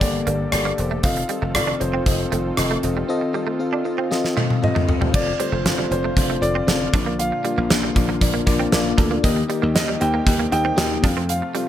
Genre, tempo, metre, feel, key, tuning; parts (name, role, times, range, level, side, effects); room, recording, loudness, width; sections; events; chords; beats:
1980s-style pop; 117 BPM; 4/4; straight; A4 = 441 Hz
warm concert grand piano; melody; 0.0-11.7 s; C5 to G5; -26 LUFS; equal; tape echo
FM electric piano; accompaniment; 0.0-11.7 s; G2 to F5; -24 LUFS; left 3 dB; chorus
brassy analog pad; sustained chords; 0.0-11.7 s; C3 to A4; -31 LUFS; right 3 dB; chorus
dry thumbed slap bass; bass; 0.0-11.4 s; E1 to F2; -25 LUFS; equal
gated 80s drum kit; drums; 0.0-11.7 s; crash cymbal, hi-hat, kick drum, rim click, snare drum, toms; -21 LUFS; equal; gated reverb
direct-recorded clean electric guitar; riff; 0.3-11.6 s; G3 to D4; -30 LUFS; right 7 dB; ensemble chorus, tape echo
light reverb, small room ambience; -18 LUFS; side -11 dB against mid
0.0-5.1 A section; 5.1-11.7 B section
drum fill 4.1-5.1; FM electric piano fill 4.4-5.1
0.0 Gmadd9; 1.0 F7; 5.1 F6; 6.9 Bb; 9.2 Eb; 11.0 F
0.01 0.53 | 1.04 1.55 2.06 2.58 | 3.09 3.60 4.11 4.63 | 5.14 5.65 6.17 6.68 | 7.19 7.70 8.22 8.73 | 9.24 9.76 10.27 10.78 | 11.29